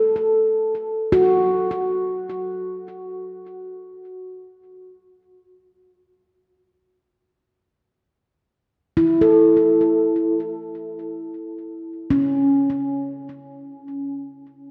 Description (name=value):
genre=ambient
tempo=free time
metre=none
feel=none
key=D major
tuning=A4 = 440 Hz
part: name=handpan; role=solo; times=0.0-4.2, 9.0-14.7 s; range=C#4 to B4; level=-21 LUFS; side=equal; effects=delay
room=wet lush hall reverb, RT60 2.7 s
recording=dreamy mix soaked in reverb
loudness=-20 LUFS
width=mono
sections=0.0-8.2 A section; 8.2-14.7 A section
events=none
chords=0.0 F#m; 8.2 Dmaj7sus2 (rootless)